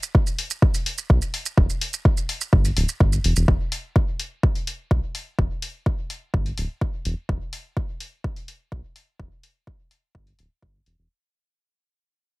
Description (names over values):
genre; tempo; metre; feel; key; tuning
dub techno; 126 BPM; 4/4; straight; E minor; A4 = 440 Hz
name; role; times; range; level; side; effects
electronic shaker and hi-hat; drums; 0.0-11.0 s; none; -29 LUFS; equal; overdrive
electronic kick drum; drums; 0.1-10.7 s; none; -20 LUFS; equal; overdrive
round analog bass; bass; 1.1-11.1 s; D1 to B1; -22 LUFS; equal; tube saturation, sidechain pumping
room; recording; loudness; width
little or no reverb; heavily compressed radio sound, multiband compression; -21 LUFS; side -22 dB against mid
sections
0.0-3.5 A section; 3.5-11.1 B section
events
fade-out 3.5-11.1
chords
none